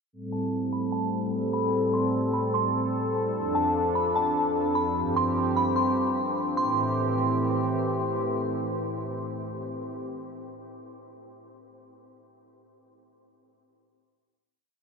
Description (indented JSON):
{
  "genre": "hip hop, atmospheric cloud-rap",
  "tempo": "149 BPM",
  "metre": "4/4",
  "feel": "half-time",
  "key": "A minor",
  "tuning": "A4 = 439 Hz",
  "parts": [
    { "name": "warm analog pad", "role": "sustained chords", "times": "0.1-10.0 s", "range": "F2 to A4", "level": "-27 LUFS", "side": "equal", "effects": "chorus, low-pass filter" },
    { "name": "glassy synth bell", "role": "melody", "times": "0.3-7.7 s", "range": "A5 to C6", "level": "-29 LUFS", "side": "equal", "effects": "chorus, phaser, low-pass filter, ping-pong delay" }
  ],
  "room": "wet huge ambient reverb, RT60 8.6 s",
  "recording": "dreamy mix soaked in reverb",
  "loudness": "-24 LUFS",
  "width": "side -5 dB against mid",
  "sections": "0.1-6.6 breakdown; 6.6-9.8 final chord",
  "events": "filter sweep 0.1-6.6",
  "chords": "0.1 Am7; 3.3 F6; 5.0 G7sus4; 6.6 Am7",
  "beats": "| 0.13 0.53 0.93 1.33 | 1.74 2.14 2.54 2.95 | 3.35 3.75 4.15 4.56 | 4.96 5.36 5.76 6.17 | 6.57 6.97 7.38 7.78 | 8.18 8.58 8.99 9.39"
}